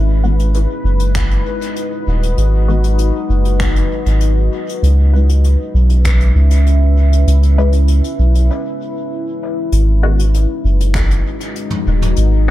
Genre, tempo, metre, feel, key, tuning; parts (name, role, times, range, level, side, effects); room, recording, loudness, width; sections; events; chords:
ambient dub; 98 BPM; 4/4; straight; G# minor; A4 = 440 Hz
deep dark ambient pad; sustained chords; 0.0-12.5 s; G#3 to E5; -21 LUFS; left 2 dB; chorus, built-in reverb
soft dub sub bass; bass; 0.0-12.5 s; D#1 to C#2; -11 LUFS; equal
filtered dub chord stab; stabs; 0.2-12.5 s; D#3 to B4; -24 LUFS; left 4 dB; phaser, lush chorus, dub echo
soft brush drum kit; drums; 0.4-12.3 s; finger snaps, hi-hat, toms; -27 LUFS; left 2 dB; dub echo
electronic kick drum; drums; 1.2-6.2, 10.9-11.1 s; -21 LUFS; equal
studio ambience; echo-heavy mix; -12 LUFS; side -15 dB against mid
0.0-9.7 A section; 9.7-12.5 B section
filter sweep on synth stab 0.0-9.7; break 8.5-9.7
0.0 G#m7; 4.8 C#m7; 9.7 G#m7